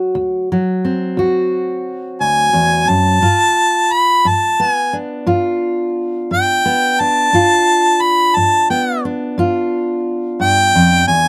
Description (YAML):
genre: acoustic country blues, solo or duo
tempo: 59 BPM (dotted quarters)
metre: 12/8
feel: straight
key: unclear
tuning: A4 = 441 Hz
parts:
  - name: fingerpicked steel-string acoustic guitar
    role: accompaniment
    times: 0.0-11.3 s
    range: D2 to F#4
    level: -19 LUFS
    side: equal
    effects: none
  - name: warm harmonica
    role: melody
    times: 2.2-11.3 s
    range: G5 to B5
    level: -14 LUFS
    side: equal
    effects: none
room: little or no reverb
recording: close, detailed microphones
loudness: -15 LUFS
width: mono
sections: 0.0-11.3 A section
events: none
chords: 0.0 D7; 3.2 G7